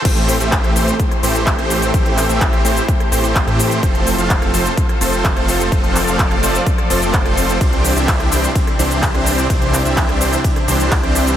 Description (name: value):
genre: EDM, festival progressive house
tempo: 127 BPM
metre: 4/4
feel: straight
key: A minor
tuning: A4 = 444 Hz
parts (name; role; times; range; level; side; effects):
- supersaw chords; riff; 0.0-11.4 s; E3 to F5; -18 LUFS; right 1 dB; sidechain pumping, tape echo
- lush unison pad; sustained chords; 0.1-11.4 s; C3 to D5; -22 LUFS; equal; chorus, sidechain pumping
- wide detuned saw bass; bass; 0.1-11.4 s; F1 to A2; -20 LUFS; equal; chorus, sidechain pumping
- big-room dance drum kit; drums; 0.1-11.4 s; crash cymbal, handclaps, hi-hat, ride cymbal, rim click, shaker; -22 LUFS; left 1 dB; overdrive, high-pass filter on snare, studio reverb, high-pass filter on hats, high-pass filter on cymbals, high-pass filter on perc
- electronic kick drum; drums; 0.1-11.0 s; none; -17 LUFS; equal; overdrive, studio reverb
room: moderate huge ambient reverb, RT60 7.5 s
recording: dreamy mix soaked in reverb, high-pass filter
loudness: -13 LUFS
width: side -10 dB against mid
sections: 0.1-11.4 A section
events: drop 0.1-11.4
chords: 0.1 Am7; 3.8 F; 7.6 Cadd9